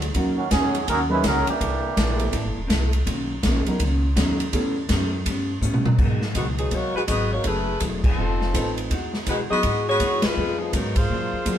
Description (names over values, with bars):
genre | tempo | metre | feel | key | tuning
jazz, big band swing | 164 BPM | 4/4 | swing 63% on 8ths | G# minor | A4 = 439 Hz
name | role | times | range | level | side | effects
vintage hollow-body jazz guitar | accompaniment | 0.0-11.6 s | G#2 to A4 | -29 LUFS | left 2 dB | none
upright bass | bass | 0.0-11.6 s | E1 to B2 | -26 LUFS | equal | none
swinging big-band drum kit | drums | 0.0-11.6 s | crash cymbal, hi-hat, kick drum, ride cymbal, snare drum, toms | -25 LUFS | equal | none
warm grand piano | accompaniment | 0.2-11.6 s | F#3 to C#5 | -28 LUFS | right 1 dB | none
muted trombone section | second line | 0.4-2.5 s | D#3 to B4 | -24 LUFS | right 2 dB | none
warm saxophone section | melody | 6.4-11.6 s | D#3 to D#5 | -24 LUFS | left 1 dB | none
room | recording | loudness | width
wet small room reverb, RT60 0.5 s | band playing live in one room | -20 LUFS | side -10 dB against mid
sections
0.0-6.0 A section; 6.0-11.6 B section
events
trombone section solo 0.0-6.0; drum fill 5.6-6.0; band accent 8.0, 10.2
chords
0.1 D#m7; 1.6 C13; 3.1 Bmaj9; 4.5 A9; 6.0 G#m7; 7.4 F#m9; 8.2 F7#11; 8.9 Emaj9; 10.4 Fm7b5